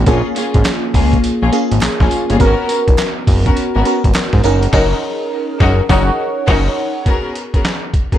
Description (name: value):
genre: R&B, new jack swing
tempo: 103 BPM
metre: 4/4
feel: swing 64% on 16ths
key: G# dorian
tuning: A4 = 443 Hz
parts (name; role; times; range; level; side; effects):
- FM electric piano with soft pad layer; accompaniment; 0.0-7.1 s; A#3 to F#5; -17 LUFS; equal; chorus, phaser
- fat analog bass; bass; 0.0-6.7 s; F#1 to G#2; -15 LUFS; equal; none
- warm studio string section; stabs; 0.1-8.2 s; A#3 to A#4; -20 LUFS; left 3 dB; digital delay
- boom bap sampler-style drum kit; drums; 0.1-8.2 s; crash cymbal, handclaps, hi-hat, kick drum, snare drum, tambourine; -16 LUFS; equal; vintage 12-bit sampler grit
- group handclap; percussion; 0.7-4.3 s; none; -32 LUFS; right 7 dB; none
room: little or no reverb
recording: dark, warm production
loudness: -12 LUFS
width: side -11 dB against mid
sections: 0.0-7.1 A section; 7.1-8.2 B section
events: band accent 4.7-7.1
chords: 0.1 A#m7; 2.4 G#m11; 4.4 F#6; 7.1 G#m11